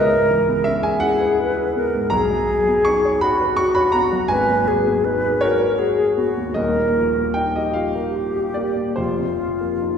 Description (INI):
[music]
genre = classical, impressionist duo for flute and grand piano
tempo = 47-56 BPM (dotted quarters)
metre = 6/8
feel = rubato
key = unclear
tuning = A4 = 440 Hz
[part]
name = mellow hollow silver concert flute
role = melody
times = 0.0-10.0 s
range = F4 to B4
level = -19 LUFS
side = left 1 dB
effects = none
[part]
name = warm grand piano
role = accompaniment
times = 0.0-10.0 s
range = Eb1 to C#6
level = -20 LUFS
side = equal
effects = none
[sound]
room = wet concert hall reverb, RT60 2.1 s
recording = heard from further back in the room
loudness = -17 LUFS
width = side -7 dB against mid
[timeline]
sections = 0.0-10.0 A section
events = none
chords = 0.0 C#m7; 2.1 Bmaj9; 4.3 Abm7; 6.6 Ebadd9; 9.0 F7sus4